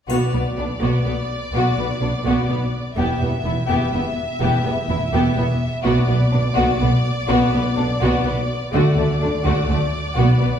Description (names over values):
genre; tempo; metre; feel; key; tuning
cinematic, epic orchestral film score; 125 BPM; 3/4; straight; B minor; A4 = 440 Hz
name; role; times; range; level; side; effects
rich symphonic violin section; melody; 0.1-10.6 s; D5 to E5; -27 LUFS; left 2 dB; none
warm symphonic violin section; second line; 0.1-10.5 s; A3 to G4; -24 LUFS; left 4 dB; none
rich symphonic viola section; accompaniment; 0.1-10.5 s; A3 to B3; -24 LUFS; right 1 dB; none
clear symphonic double bass section; bass; 0.1-10.5 s; E1 to D2; -22 LUFS; right 1 dB; none
warm symphonic cello section; bass; 0.1-10.5 s; E2 to D3; -24 LUFS; right 2 dB; none
triangle; percussion; 0.1-1.0 s; none; -40 LUFS; left 3 dB; none
room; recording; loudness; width
wet recital hall reverb, RT60 1.5 s; recorded in a church or concert hall; -17 LUFS; side -8 dB against mid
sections
0.1-10.6 A section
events
none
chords
0.1 Bm; 3.0 Em; 5.9 Bm; 8.7 D